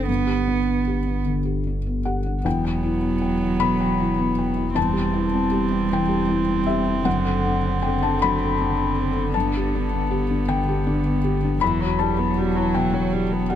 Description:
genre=neoclassical piano and strings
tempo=52 BPM (dotted quarters)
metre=6/8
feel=rubato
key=E minor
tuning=A4 = 440 Hz
part: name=dark cello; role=second line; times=0.0-13.6 s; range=D3 to B3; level=-26 LUFS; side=right 6 dB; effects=none
part: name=felt-muted upright piano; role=accompaniment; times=0.0-13.6 s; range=E2 to B5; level=-23 LUFS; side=left 4 dB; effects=none
part: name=saturated sub bass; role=bass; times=0.0-13.6 s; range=E1 to G1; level=-27 LUFS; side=equal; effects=none
part: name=warm viola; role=accompaniment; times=2.4-13.6 s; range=E3 to C4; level=-28 LUFS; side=right 3 dB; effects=none
room=light reverb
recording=close, detailed microphones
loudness=-20 LUFS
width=side -10 dB against mid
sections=0.0-2.4 A section; 2.4-13.6 B section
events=none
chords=0.1 G; 2.4 Emadd9; 4.8 C/E; 7.1 D7/F#; 9.3 G; 11.6 Emadd9

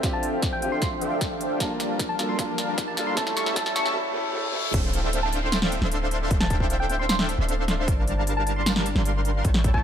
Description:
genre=future bass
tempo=153 BPM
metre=4/4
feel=half-time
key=D minor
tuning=A4 = 441 Hz
part: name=bright concert grand piano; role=accompaniment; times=0.0-4.8 s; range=A3 to A5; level=-31 LUFS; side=right 1 dB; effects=sidechain pumping, tape echo
part: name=shimmering ambient pad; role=sustained chords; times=0.0-3.9 s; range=F3 to A5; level=-38 LUFS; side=left 1 dB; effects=chorus, built-in reverb, phaser, sidechain pumping
part: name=soft supersaw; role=riff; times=0.0-9.8 s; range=G3 to C6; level=-28 LUFS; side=equal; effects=sidechain pumping, low-pass filter, tape echo
part: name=big-room dance drum kit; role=drums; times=0.0-9.7 s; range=crash cymbal, hi-hat, snare drum, toms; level=-28 LUFS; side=equal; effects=overdrive, high-pass filter on snare, studio reverb, high-pass filter on hats, high-pass filter on toms, high-pass filter on cymbals
part: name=electronic kick drum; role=drums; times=0.0-9.8 s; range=none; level=-27 LUFS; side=equal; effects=overdrive, studio reverb
part: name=riser, reverse cymbal and downlifter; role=sound effects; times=2.2-7.9 s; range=none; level=-36 LUFS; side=left 2 dB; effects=none
part: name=soft struck synth lead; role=melody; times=0.1-9.8 s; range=G5 to C#6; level=-31 LUFS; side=equal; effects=chorus, phaser, sidechain pumping, dub echo
part: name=Celtic harp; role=arpeggios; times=4.7-9.8 s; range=C4 to E5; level=-36 LUFS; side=right 2 dB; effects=sidechain pumping, tape echo
part: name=warm 808-style bass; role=bass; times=4.7-9.8 s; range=D1 to A1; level=-26 LUFS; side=equal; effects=sidechain pumping
room=light reverb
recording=dark, warm production, high-pass filter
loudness=-22 LUFS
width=side -9 dB against mid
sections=0.0-4.7 A section; 4.7-9.8 B section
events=build-up 0.0-4.7; drum fill 0.0-4.0, 4.3-4.7; filter sweep on supersaw synth 0.0-4.7; filter sweep 0.0-4.7; break 4.0-4.7; reverse cymbal 4.0-4.7; drop 4.7-9.8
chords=0.0 Dm11; 1.6 Gm9; 3.2 A7; 4.7 Dm11; 7.9 Gm9

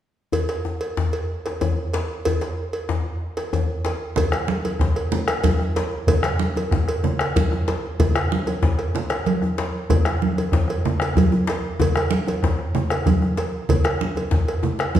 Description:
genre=west african traditional, West African drum ensemble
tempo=126 BPM (dotted quarters)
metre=12/8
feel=straight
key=none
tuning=none
part: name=cowbell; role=percussion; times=0.3-15.0 s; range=none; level=-27 LUFS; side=right 3 dB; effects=none
part: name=djembe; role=percussion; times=0.3-15.0 s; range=none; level=-24 LUFS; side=left 3 dB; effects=none
part: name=bombo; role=percussion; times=4.2-15.0 s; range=none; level=-24 LUFS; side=equal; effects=none
part: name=congas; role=percussion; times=4.2-15.0 s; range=none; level=-24 LUFS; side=right 3 dB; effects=none
room=wet recital hall reverb, RT60 1.6 s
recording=recorded in a church or concert hall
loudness=-20 LUFS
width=side -11 dB against mid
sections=0.3-4.2 A section; 4.2-15.0 B section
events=none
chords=none

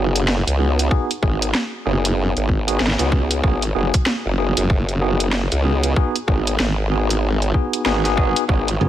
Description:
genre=glitch hop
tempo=95 BPM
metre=4/4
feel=swing 60% on 16ths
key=G# minor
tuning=A4 = 436 Hz
part: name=tine electric piano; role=stabs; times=0.0-8.9 s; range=B3 to G#4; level=-23 LUFS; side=equal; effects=medium stereo tremolo, sidechain pumping, low-pass filter, tape echo
part: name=formant-sweep wobble bass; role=bass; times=0.0-8.8 s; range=F#1 to C#2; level=-20 LUFS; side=equal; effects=chorus, overdrive
part: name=drum and bass drum kit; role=drums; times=0.2-8.8 s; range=hi-hat, snare drum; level=-22 LUFS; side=equal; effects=studio reverb
part: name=electronic kick drum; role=drums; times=0.9-8.6 s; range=none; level=-18 LUFS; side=equal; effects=studio reverb
part: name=modern bright fingered electric bass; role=bass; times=8.8-8.9 s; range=F#1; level=-16 LUFS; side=equal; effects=none
room=little or no reverb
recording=none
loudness=-17 LUFS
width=side -12 dB against mid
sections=0.0-8.9 A section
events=filter sweep on tine electric piano 0.0-8.9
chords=0.0 G#m7

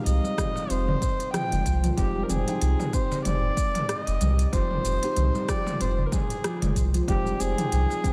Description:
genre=organic downtempo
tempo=94 BPM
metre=4/4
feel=swing 57% on 16ths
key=F dorian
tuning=A4 = 440 Hz
part: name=dark kamancheh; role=melody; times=0.0-8.1 s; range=G4 to G5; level=-32 LUFS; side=equal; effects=tape echo
part: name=felt-muted upright piano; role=accompaniment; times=0.0-8.1 s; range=Ab3 to G5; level=-38 LUFS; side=equal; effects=sidechain pumping, digital delay
part: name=warm sub bass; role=bass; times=0.1-7.9 s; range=F1 to C2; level=-27 LUFS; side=equal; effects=sidechain pumping
part: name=organic electronic drum kit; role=drums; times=0.1-8.1 s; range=hi-hat, rim click, shaker, toms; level=-34 LUFS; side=equal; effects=none
part: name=handpan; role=arpeggios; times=0.2-8.1 s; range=F3 to C4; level=-35 LUFS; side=equal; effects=digital delay
part: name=darbuka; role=percussion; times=0.2-8.1 s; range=none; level=-40 LUFS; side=equal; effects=none
part: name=electronic kick drum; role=drums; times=0.4-8.1 s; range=none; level=-30 LUFS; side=equal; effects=none
room=light reverb, small room ambience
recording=none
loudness=-25 LUFS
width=mono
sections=0.0-8.1 A section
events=none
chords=0.0 Fm7

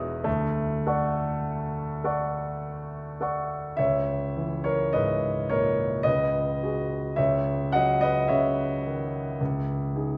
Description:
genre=classical, impressionist solo piano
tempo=50-55 BPM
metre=3/4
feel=rubato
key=unclear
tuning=A4 = 441 Hz
part: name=warm concert grand piano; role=solo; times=0.0-10.2 s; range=C#2 to D#6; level=-27 LUFS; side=equal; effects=none
room=moderate recital hall reverb, RT60 1.6 s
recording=dark, warm production, lossy compression artefacts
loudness=-27 LUFS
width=mono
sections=0.0-3.8 A section; 3.8-10.2 B section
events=none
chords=0.3 Dmaj7; 3.8 C#m6; 6.1 C#9sus4; 7.2 F#5/C#; 9.4 Emaj7/C#

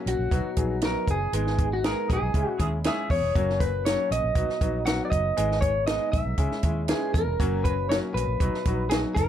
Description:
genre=uptempo 1960s-style soul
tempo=119 BPM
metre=4/4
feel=straight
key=F# mixolydian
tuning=A4 = 443 Hz
part: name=clear grand piano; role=accompaniment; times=0.0-9.2 s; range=F#3 to B4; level=-32 LUFS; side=left 4 dB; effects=none
part: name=tonewheel organ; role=sustained chords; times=0.0-9.3 s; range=F#3 to E4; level=-38 LUFS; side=right 1 dB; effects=slow rotary speaker, overdrive, chorus vibrato
part: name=electric guitar through a small old amp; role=melody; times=0.1-9.3 s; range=F#4 to F#5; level=-28 LUFS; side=equal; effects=none
part: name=vintage muted fingered electric bass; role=bass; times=0.1-9.3 s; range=E1 to E2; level=-29 LUFS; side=equal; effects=none
part: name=compact cocktail drum kit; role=drums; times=0.1-9.3 s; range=hi-hat, kick drum, snare drum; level=-27 LUFS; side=right 1 dB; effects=none
part: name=warm horn section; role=second line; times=1.8-3.3 s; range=D#3 to G#4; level=-34 LUFS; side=right 3 dB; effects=none
room=little or no reverb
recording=dark, warm production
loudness=-23 LUFS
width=side -10 dB against mid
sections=0.0-9.3 A section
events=band accent 1.3-3.4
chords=0.3 B; 1.3 G#m; 2.3 C#m; 3.4 F#; 4.4 B; 5.4 G#m; 6.4 C#m; 7.4 F#; 8.4 B

